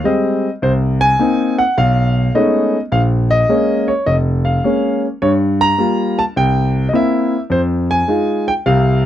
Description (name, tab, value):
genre	solo jazz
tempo	105 BPM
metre	4/4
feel	swing 67% on 8ths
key	unclear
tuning	A4 = 441 Hz
part	warm concert grand piano	solo	0.0-9.1 s	F1 to Bb5	-13 LUFS	equal	none
room	light reverb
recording	dry, close 1970s-style studio recording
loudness	-13 LUFS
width	side -11 dB against mid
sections	0.0-9.1 A section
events	none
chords	0.0 Abmaj7; 0.6 Cm7b5; 1.8 B13; 2.9 Bbm7; 5.2 Gm7; 6.4 C7; 7.5 Fm7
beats	0.06 | 0.63 1.20 1.78 2.35 | 2.92 3.50 4.07 4.65 | 5.22 5.79 6.37 6.94 | 7.52 8.09 8.66